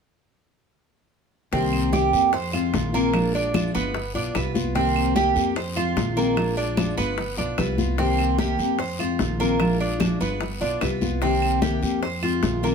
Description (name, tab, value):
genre	latin, Cuban son and guajira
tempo	148 BPM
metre	4/4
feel	straight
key	C minor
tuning	A4 = 439 Hz
part	fingerpicked steel-string acoustic guitar	accompaniment	1.5-12.7 s	C3 to G4	-25 LUFS	left 4 dB	none
part	Cuban tres	arpeggios	1.5-12.7 s	Bb3 to C5	-25 LUFS	right 6 dB	none
part	upright bass	bass	1.5-12.7 s	G1 to F2	-28 LUFS	right 1 dB	none
part	bongos	percussion	1.5-12.6 s	none	-33 LUFS	left 6 dB	none
part	congas	percussion	1.5-12.7 s	none	-29 LUFS	left 3 dB	none
part	guiro	percussion	1.5-12.7 s	none	-38 LUFS	left 4 dB	none
part	claves	percussion	1.7-12.4 s	none	-34 LUFS	right 6 dB	none
room	moderate studio reverb, RT60 0.5 s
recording	heard from further back in the room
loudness	-20 LUFS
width	side -6 dB against mid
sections	1.5-12.7 A section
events	none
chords	1.5 Cm7; 2.3 Fm7; 3.1 Bb7; 3.9 G7; 4.8 Cm7; 5.6 Fm7; 6.4 Bb7; 7.2 G7; 8.0 Cm7; 8.8 Fm7; 9.6 Bb7; 10.4 G7; 11.2 Cm7; 12.0 Fm7